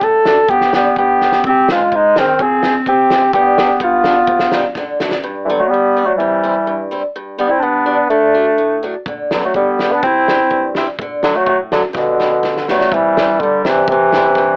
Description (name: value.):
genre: alpine folk, alpine dance band.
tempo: 125 BPM.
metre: 2/4.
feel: rubato.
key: G major from 5.2 s.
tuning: A4 = 440 Hz.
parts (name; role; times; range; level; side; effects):
warm bassoon; melody; 0.0-14.6 s; B2 to A4; -16 LUFS; equal; cassette tape.
picked swing-style acoustic guitar; accompaniment; 0.0-14.6 s; F2 to F4; -24 LUFS; equal; none.
loose indie drum kit; drums; 0.0-5.2, 9.1-14.5 s; hi-hat, kick drum, snare drum; -25 LUFS; equal; cassette tape.
warm clarinet; second line; 0.5-14.6 s; D3 to E4; -20 LUFS; equal; none.
room: light reverb.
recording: home recording on cassette, AM radio sound.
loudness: -14 LUFS.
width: mono.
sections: 0.0-5.2 A section; 5.2-12.9 B section; 12.9-14.6 C section.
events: drum fill 1.2, 4.8-5.2, 11.9-12.9.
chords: 0.5 G; 1.4 Ab; 2.4 Fmadd9; 3.3 G7; 4.3 Cm; 4.8 D; 5.2 G; 6.2 C; 7.1 G; 8.1 D; 9.1 G/D; 10.0 C; 11.0 D; 11.9 G; 12.9 C.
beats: 0.01 | 0.49 0.97 | 1.45 1.93 | 2.40 2.87 | 3.33 3.80 | 4.28 4.76 | 5.24 5.72 | 6.19 6.66 | 7.14 7.61 | 8.09 8.57 | 9.06 9.55 | 10.03 10.51 | 10.99 11.47 | 11.95 12.43 | 12.92 13.41 | 13.89 14.37.